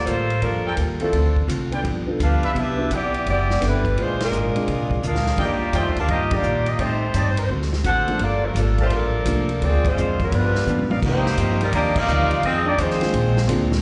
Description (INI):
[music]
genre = jazz, big band swing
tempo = 170 BPM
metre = 4/4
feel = swing 65% on 8ths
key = G minor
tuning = A4 = 440 Hz
[part]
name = mellow saxophone section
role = melody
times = 0.0-13.5 s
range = F3 to F#5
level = -25 LUFS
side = equal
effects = slapback echo
[part]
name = upright bass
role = bass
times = 0.0-13.8 s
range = F#1 to C3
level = -25 LUFS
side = equal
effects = none
[part]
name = archtop guitar, miked and amplified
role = accompaniment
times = 0.1-13.7 s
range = F2 to A4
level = -31 LUFS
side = equal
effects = slapback echo
[part]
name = vintage drum kit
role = drums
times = 0.1-13.8 s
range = crash cymbal, hi-hat, kick drum, ride cymbal, snare drum, toms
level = -31 LUFS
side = equal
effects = none
[part]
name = warm trumpet section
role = stabs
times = 0.7-2.5, 5.4-11.0 s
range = Eb4 to A5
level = -30 LUFS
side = equal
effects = slapback echo
[part]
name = warm grand piano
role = accompaniment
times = 1.0-13.7 s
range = F3 to A4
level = -29 LUFS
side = equal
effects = slapback echo
[part]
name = clear trombone section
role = second line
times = 10.2-13.5 s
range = D3 to F4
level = -32 LUFS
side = equal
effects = slapback echo
[sound]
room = little or no reverb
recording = live gig heard through the venue's PA, recital hall reverb, nothing above 10.6 kHz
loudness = -21 LUFS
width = mono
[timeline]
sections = 0.0-11.0 A section; 11.0-13.8 B section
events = band accent 4.1, 6.3, 9.8, 11.9; drum fill 5.0-5.4, 10.7-11.0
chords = 0.0 Gm9; 1.1 Dm7; 1.8 G7; 2.6 Cmaj9#11; 4.0 Bb7; 5.4 Ebmaj9; 6.8 Am7b5; 7.5 D7; 8.2 Gm9; 9.6 Dm7b5; 10.3 G7; 11.0 Cm11; 12.4 Fm7; 13.1 Bb9